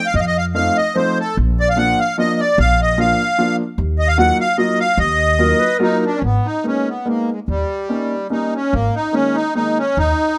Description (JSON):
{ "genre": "musette", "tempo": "146 BPM", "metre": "3/4", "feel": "swing 53% on 8ths, rubato", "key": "Eb harmonic minor, G# harmonic minor from 6.2 s", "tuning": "A4 = 440 Hz", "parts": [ { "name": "accordion", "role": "melody", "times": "0.0-10.4 s", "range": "G3 to Gb5", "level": "-19 LUFS", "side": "equal", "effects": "light tremolo tuning, plate reverb" }, { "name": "upright bass", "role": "bass", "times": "0.1-10.1 s", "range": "G#1 to F2", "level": "-21 LUFS", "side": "equal", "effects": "none" }, { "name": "clear upright piano", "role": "accompaniment", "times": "0.5-9.8 s", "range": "D#3 to F4", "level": "-22 LUFS", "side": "equal", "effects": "none" }, { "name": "warm clarinet", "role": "second line", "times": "5.4-6.2 s", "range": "Bb4 to Cb5", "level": "-23 LUFS", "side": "equal", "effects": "none" } ], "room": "moderate small room reverb, RT60 0.6 s", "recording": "none", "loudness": "-17 LUFS", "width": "mono", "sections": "0.0-6.2 A section; 6.2-10.4 B section", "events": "none", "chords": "0.0 F7; 1.4 Bb; 3.8 Ebmadd9; 6.2 G#madd9; 7.5 D#7; 8.7 G#sus2", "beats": "| 0.14 0.54 0.95 | 1.36 1.77 2.17 | 2.57 2.97 3.38 | 3.77 4.17 4.57 | 4.98 5.38 5.80 | 6.23 6.65 7.07 | 7.48 7.89 8.31 | 8.72 9.13 9.55 | 9.97" }